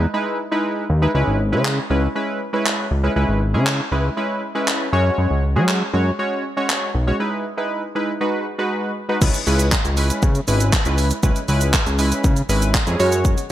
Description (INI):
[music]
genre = dance-pop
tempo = 119 BPM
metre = 4/4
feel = straight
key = C# minor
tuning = A4 = 439 Hz
[part]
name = warm analog keys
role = accompaniment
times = 0.0-13.4 s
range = G#3 to C#5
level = -21 LUFS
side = right 1 dB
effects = chorus, sidechain pumping
[part]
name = fat analog bass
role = bass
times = 0.0-13.4 s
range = G#1 to F#3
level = -18 LUFS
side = equal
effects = sidechain pumping
[part]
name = house drum kit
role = drums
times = 1.7-13.5 s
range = crash cymbal, handclaps, hi-hat, kick drum, shaker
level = -20 LUFS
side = equal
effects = gated reverb
[sound]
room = light reverb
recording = bright 1980s-style digital production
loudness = -17 LUFS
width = side -12 dB against mid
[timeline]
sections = 0.0-9.2 A section; 9.2-13.5 B section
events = break 7.2-9.2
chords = 0.0 Emaj7; 1.1 C#m7; 4.9 F#sus2; 7.2 Emaj7; 8.2 G#m7; 9.2 C#m7; 13.0 F#sus2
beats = 0.14 0.64 | 1.15 1.65 2.16 2.66 | 3.16 3.67 4.17 4.68 | 5.18 5.68 6.19 6.69 | 7.20 7.70 8.21 8.71 | 9.21 9.72 10.22 10.73 | 11.23 11.74 12.24 12.74 | 13.25